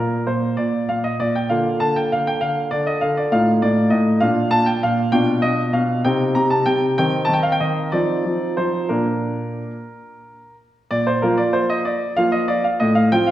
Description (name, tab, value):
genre	classical-period piano sonatina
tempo	59-68 BPM (dotted quarters)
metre	6/8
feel	rubato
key	Bb major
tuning	A4 = 441 Hz
part	clear concert grand piano	solo	0.0-13.3 s	A2 to Bb5	-17 LUFS	equal	none
room	wet recital hall reverb, RT60 1.6 s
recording	heard from further back in the room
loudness	-17 LUFS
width	side -13 dB against mid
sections	0.0-10.9 A section; 10.9-13.3 B section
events	none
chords	0.0 Bb5; 1.5 Bb/D; 3.3 F7/A; 4.2 Bb; 5.1 G7b13/B; 6.0 Cm; 7.0 Cm/Eb; 7.9 F5; 8.9 Bb; 10.9 Bb5; 12.8 F/A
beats	0.58 | 1.50 2.42 | 3.32 4.22 | 5.12 6.04 | 6.98 7.94 | 8.91 9.91 | 10.92 11.87 | 12.81